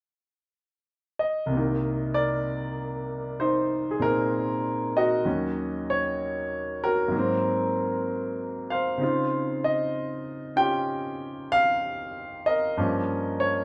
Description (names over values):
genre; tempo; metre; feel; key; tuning
solo jazz; 64 BPM; 4/4; swing 66% on 8ths; C minor; A4 = 439 Hz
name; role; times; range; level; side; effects
warm concert grand piano; solo; 1.2-13.6 s; C2 to G5; -27 LUFS; equal; none
room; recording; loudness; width
wet small room reverb, RT60 0.5 s; rough home demo mix; -27 LUFS; mono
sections
0.0-1.5 A section; 1.5-13.6 B section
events
none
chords
0.0 N.C.; 1.5 Cm7; 5.3 Ebm7; 7.1 Ab9; 9.0 Dbmaj9; 12.8 Gm7b5